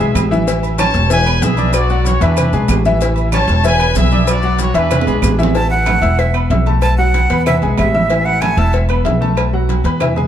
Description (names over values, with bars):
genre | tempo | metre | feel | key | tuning
latin, salsa | 189 BPM | 4/4 | straight | A major | A4 = 440 Hz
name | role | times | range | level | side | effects
clear trumpet section | melody | 0.0-5.4 s | D4 to A5 | -19 LUFS | left 1 dB | none
clear grand piano | accompaniment | 0.0-10.3 s | E3 to E6 | -19 LUFS | left 2 dB | none
upright bass | bass | 0.0-10.3 s | E1 to E2 | -15 LUFS | equal | none
agogo bells and timbales | percussion | 0.0-10.3 s | none | -24 LUFS | right 8 dB | none
congas | percussion | 0.0-10.3 s | none | -23 LUFS | right 2 dB | none
maracas | percussion | 0.0-5.6 s | none | -30 LUFS | left 7 dB | none
claves | percussion | 0.2-10.2 s | none | -29 LUFS | right 8 dB | none
cowbell | percussion | 0.2-10.2 s | none | -24 LUFS | left 4 dB | none
breathy bright jazz flute | melody | 5.6-8.7 s | E5 to A5 | -18 LUFS | right 2 dB | none
room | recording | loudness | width
moderate plate reverb, RT60 2.6 s | heard from further back in the room | -12 LUFS | side -10 dB against mid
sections
0.0-5.6 A section; 5.6-10.3 B section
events
drum fill 4.9-5.6; flute solo 5.6-10.3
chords
0.5 A; 1.1 E7; 1.7 Bm; 2.4 E7; 3.0 A; 3.6 E7; 4.3 Bm; 4.9 E7; 5.6 A5; 6.2 E5; 6.8 B5; 7.5 E; 8.1 A5; 8.7 E5; 9.4 B5